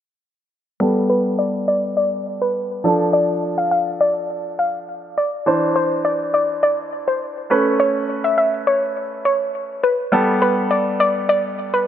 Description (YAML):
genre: pop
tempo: 103 BPM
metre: 4/4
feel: straight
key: unclear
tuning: A4 = 440 Hz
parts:
  - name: clear baby grand piano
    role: accompaniment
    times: 0.8-11.9 s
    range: E3 to C5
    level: -20 LUFS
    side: right 1 dB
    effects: low-pass filter
  - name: soft round pluck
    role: melody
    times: 1.1-11.9 s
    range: B4 to F5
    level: -19 LUFS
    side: left 1 dB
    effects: chorus, low-pass filter, ping-pong delay
room: moderate plate reverb, RT60 3.4 s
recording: nothing above 10.8 kHz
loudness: -17 LUFS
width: side -10 dB against mid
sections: 0.8-11.9 A section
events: filter sweep 0.8-11.9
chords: 0.8 Gadd9; 2.8 Dm; 5.5 Cadd9; 7.5 Aadd9; 10.1 Gadd9